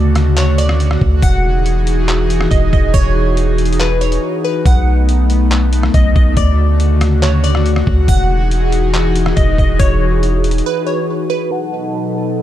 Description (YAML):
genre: hip hop, atmospheric cloud-rap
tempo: 140 BPM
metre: 4/4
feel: half-time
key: E major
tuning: A4 = 441 Hz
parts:
  - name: glassy wavetable pluck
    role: melody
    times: 0.0-12.4 s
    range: B4 to F#5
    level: -21 LUFS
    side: equal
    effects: chorus, low-pass filter, tape echo
  - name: airy breathy pad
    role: sustained chords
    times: 0.0-12.4 s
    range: B2 to A4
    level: -18 LUFS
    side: left 1 dB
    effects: chorus, sidechain pumping, low-pass filter
  - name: long sustained 808-style bass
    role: bass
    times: 0.0-10.6 s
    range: E1 to D2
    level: -14 LUFS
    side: equal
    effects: none
  - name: trip hop sampler-style drum kit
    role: drums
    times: 0.2-10.7 s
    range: handclaps, hi-hat, kick drum, rim click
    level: -16 LUFS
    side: equal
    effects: none
  - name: glassy digital keys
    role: arpeggios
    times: 11.5-12.4 s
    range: A4 to A5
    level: -26 LUFS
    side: right 4 dB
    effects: chorus, low-pass filter, tape echo
room: little or no reverb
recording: dark, warm production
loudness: -11 LUFS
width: side -12 dB against mid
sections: 0.0-11.5 A section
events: break 4.2-4.7, 10.7-11.5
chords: 0.0 Dmaj7; 1.2 Emaj9; 4.7 B7; 6.4 Dmaj7; 8.1 Emaj9; 11.5 B7